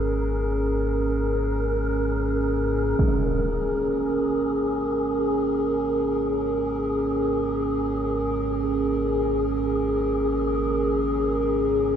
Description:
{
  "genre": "dark ambient drone",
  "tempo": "free time",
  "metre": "none",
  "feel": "none",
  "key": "unclear",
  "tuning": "A4 = 440 Hz",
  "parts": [
    { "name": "dark analog pad", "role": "sustained chords", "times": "0.0-12.0 s", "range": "C#4 to A#4", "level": "-23 LUFS", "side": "right 2 dB", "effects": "chorus" },
    { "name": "deep rumbling drone", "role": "drone", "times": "0.0-12.0 s", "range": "G#1 to G#2", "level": "-30 LUFS", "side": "equal", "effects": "built-in reverb, lush chorus" },
    { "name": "wind-like tuned noise texture", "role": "texture", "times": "0.0-12.0 s", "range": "G#4 to A#4", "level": "-30 LUFS", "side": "left 3 dB", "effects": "built-in reverb" },
    { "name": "impact", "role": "percussion", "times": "3.0-3.2 s", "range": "none", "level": "-26 LUFS", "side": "equal", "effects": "low-pass filter on sfx" }
  ],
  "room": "moderate plate reverb, RT60 2.7 s",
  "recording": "dreamy mix soaked in reverb",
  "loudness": "-22 LUFS",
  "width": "side -8 dB against mid",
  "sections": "0.0-3.0 A section; 3.0-12.0 B section",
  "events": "fade-in on synth drone 3.0-12.0",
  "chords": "0.0 G#sus2",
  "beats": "free time"
}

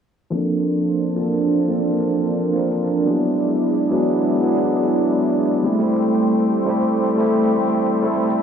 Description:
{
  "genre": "liquid drum and bass",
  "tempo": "175 BPM",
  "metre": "4/4",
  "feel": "straight",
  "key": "Bb lydian",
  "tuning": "A4 = 440 Hz",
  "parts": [
    { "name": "barky tine electric piano", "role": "accompaniment", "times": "0.3-8.4 s", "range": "F3 to Bb4", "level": "-18 LUFS", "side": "right 1 dB", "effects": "slow stereo tremolo, low-pass filter, digital delay" },
    { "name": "lush unison pad", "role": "sustained chords", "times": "0.3-8.4 s", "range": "G#3 to A5", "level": "-22 LUFS", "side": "equal", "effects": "chorus" },
    { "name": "electronic hi-hat", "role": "drums", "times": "0.3-8.4 s", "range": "none", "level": "-55 LUFS", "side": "left 1 dB", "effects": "none" }
  ],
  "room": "moderate plate reverb, RT60 1.5 s",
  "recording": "low-pass filter, studio reverb",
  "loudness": "-17 LUFS",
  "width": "side -7 dB against mid",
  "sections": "0.3-8.4 A section",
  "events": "filter sweep on tine electric piano 0.3-8.4; filter sweep 0.3-8.4",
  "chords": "0.3 Bbmaj9; 3.1 E7; 5.6 Am7",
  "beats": "| 0.33 0.67 1.01 1.36 | 1.70 2.04 2.38 2.73 | 3.07 3.41 3.76 4.10 | 4.44 4.79 5.13 5.47 | 5.81 6.16 6.50 6.84 | 7.18 7.53 7.87 8.21"
}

